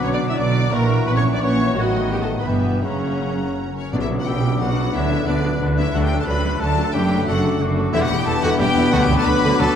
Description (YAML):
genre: classical, dramatic, fast romantic movement for symphony orchestra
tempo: 162-183 BPM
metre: 3/4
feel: rubato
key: B minor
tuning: A4 = 440 Hz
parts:
  - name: bright symphonic violin section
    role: melody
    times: 0.0-9.8 s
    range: B4 to B5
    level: -27 LUFS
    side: left 6 dB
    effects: none
  - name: hollow small flute group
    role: second line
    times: 0.0-9.8 s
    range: A#5 to F#6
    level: -32 LUFS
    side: left 4 dB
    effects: none
  - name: warm oboe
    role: second line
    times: 0.0-9.8 s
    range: F#4 to G5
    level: -31 LUFS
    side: right 2 dB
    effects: none
  - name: warm symphonic violin section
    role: second line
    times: 0.0-9.8 s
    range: D4 to E6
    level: -32 LUFS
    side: left 4 dB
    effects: none
  - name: rich symphonic viola section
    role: accompaniment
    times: 0.0-9.8 s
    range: D3 to E5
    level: -26 LUFS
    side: right 1 dB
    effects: none
  - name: warm bassoon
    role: accompaniment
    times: 0.0-9.8 s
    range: C#3 to B3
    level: -29 LUFS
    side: right 2 dB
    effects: none
  - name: clear trombone section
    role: sustained chords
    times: 0.0-9.8 s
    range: B2 to B3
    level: -31 LUFS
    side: right 3 dB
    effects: none
  - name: dark French horn section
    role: sustained chords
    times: 0.0-9.8 s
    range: B2 to E4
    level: -27 LUFS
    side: left 5 dB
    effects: none
  - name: concert harp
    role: arpeggios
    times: 0.0-9.8 s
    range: F#2 to B5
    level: -28 LUFS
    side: left 9 dB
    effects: none
  - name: rich symphonic cello section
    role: bass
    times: 0.0-9.7 s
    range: D2 to D3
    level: -25 LUFS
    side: right 1 dB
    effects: none
  - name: warm symphonic double bass section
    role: bass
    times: 0.0-9.7 s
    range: E1 to D2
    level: -23 LUFS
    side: right 3 dB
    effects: none
  - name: warm trumpet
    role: stabs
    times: 3.8-9.8 s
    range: C#4 to B4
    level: -28 LUFS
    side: right 1 dB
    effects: none
  - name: tam-tam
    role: percussion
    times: 3.9-5.2 s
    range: none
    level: -32 LUFS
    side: left 2 dB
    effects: none
  - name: timpani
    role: percussion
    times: 3.9-4.4 s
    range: B2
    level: -31 LUFS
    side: left 1 dB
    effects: none
room: moderate concert hall reverb, RT60 2.2 s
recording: dark, warm production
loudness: -17 LUFS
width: side -8 dB against mid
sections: 0.0-3.9 A section; 3.9-9.8 B section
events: band accent 3.9-4.3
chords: 0.0 Bm; 0.7 F#7/A#; 1.8 B7/A; 2.5 Em/G; 2.8 F#; 3.9 Bm; 4.9 Bm/D; 5.9 D; 6.9 D/F#; 7.9 Em7; 8.9 Bm/D